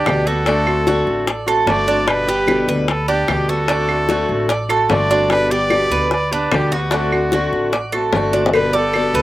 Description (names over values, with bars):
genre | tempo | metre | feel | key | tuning
latin, Cuban son and guajira | 149 BPM | 4/4 | straight | G major | A4 = 440 Hz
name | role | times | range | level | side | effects
clear trumpet | melody | 0.0-9.2 s | F#4 to D5 | -21 LUFS | equal | slapback echo
picked swing-style acoustic guitar | accompaniment | 0.0-9.2 s | B2 to G4 | -20 LUFS | left 2 dB | none
Cuban tres | arpeggios | 0.0-9.2 s | D4 to D5 | -20 LUFS | right 3 dB | none
upright bass | bass | 0.0-9.2 s | G1 to D2 | -24 LUFS | equal | none
bongos and cowbell | percussion | 0.1-9.2 s | none | -21 LUFS | left 4 dB | slapback echo
claves | percussion | 0.1-9.1 s | none | -25 LUFS | right 5 dB | none
room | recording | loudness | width
little or no reverb | recorded outdoors, with no room sound | -14 LUFS | side -15 dB against mid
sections
0.0-8.5 A section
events
drum fill 8.3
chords
0.5 D7; 2.1 G; 3.7 D7; 5.3 G; 6.9 D7; 8.5 G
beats
0.07 | 0.47 0.87 1.28 1.68 | 2.08 2.48 2.89 3.29 | 3.69 4.10 4.50 4.90 | 5.31 5.71 6.11 6.52 | 6.92 7.32 7.73 8.13 | 8.54 8.94